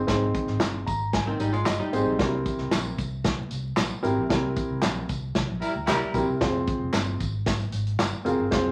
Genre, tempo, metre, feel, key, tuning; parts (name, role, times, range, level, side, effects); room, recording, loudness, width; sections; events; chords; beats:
uptempo 1960s-style soul; 114 BPM; 4/4; straight; A4 = 440 Hz
vintage muted fingered electric bass; bass; 0.0-8.7 s; F1 to D2; -33 LUFS; equal
dark grand piano; accompaniment; 0.1-8.7 s; C4 to Bb5; -29 LUFS; equal
natural country drum kit; drums; 0.1-8.6 s; hi-hat, kick drum, snare drum; -30 LUFS; equal
handclaps and tambourine; percussion; 0.6-8.6 s; -37 LUFS; equal
archtop guitar, miked and amplified; riff; 1.3-2.2 s; Eb3 to F4; -31 LUFS; equal
clear horn section; second line; 5.6-6.3 s; G3 to Bb4; -29 LUFS; equal
wet club reverb, RT60 0.6 s; vinyl crackle; -26 LUFS; mono
0.0-8.7 A section
grand piano fill 0.6-2.2; band accent 4.3-6.4
0.0 Ab; 2.2 C7; 6.4 Fm
| 0.08 0.61 1.14 1.67 | 2.19 2.72 3.25 3.78 | 4.30 4.83 5.36 5.88 | 6.41 6.94 7.47 7.99 | 8.52